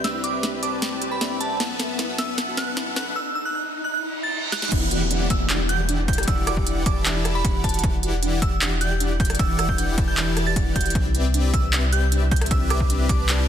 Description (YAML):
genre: future bass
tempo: 154 BPM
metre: 4/4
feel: half-time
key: E minor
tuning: A4 = 439 Hz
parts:
  - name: glassy synth bell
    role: melody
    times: 0.0-13.2 s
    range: A5 to A6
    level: -28 LUFS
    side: right 3 dB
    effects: chorus, sidechain pumping, digital delay
  - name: soft round pluck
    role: arpeggios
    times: 0.0-13.4 s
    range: D4 to B4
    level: -34 LUFS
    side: equal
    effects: wide subtle chorus, sidechain pumping, digital delay
  - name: big bright polysynth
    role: riff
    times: 0.0-13.5 s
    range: E3 to A5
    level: -28 LUFS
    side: left 2 dB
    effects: sidechain pumping, digital delay
  - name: saturated sub bass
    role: bass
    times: 0.0-13.5 s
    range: E1 to C2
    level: -25 LUFS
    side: equal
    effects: sidechain pumping
  - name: trap drum kit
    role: drums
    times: 0.0-13.4 s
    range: crash cymbal, handclaps, hi-hat, rim click, snare drum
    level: -26 LUFS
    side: equal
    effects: overdrive
  - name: riser, reverse cymbal and downlifter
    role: sound effects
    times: 0.0-7.8 s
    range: none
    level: -31 LUFS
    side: equal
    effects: none
  - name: electronic kick drum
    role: drums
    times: 4.7-13.2 s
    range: none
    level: -23 LUFS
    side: equal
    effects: overdrive
room: light reverb, digital ambience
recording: dense, heavily limited modern master, high-pass filter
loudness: -20 LUFS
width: side -9 dB against mid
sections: 0.0-4.7 A section; 4.7-13.5 B section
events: build-up 0.0-4.7; drum fill 0.0-3.2, 4.5; riser 0.0-4.7; filter sweep on synth arpeggio sound 0.0-4.7; reverse cymbal 3.9-4.7; drop 4.7-13.5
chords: 0.0 Cmaj9; 1.6 B7sus4; 4.7 Em9; 11.0 Cmaj9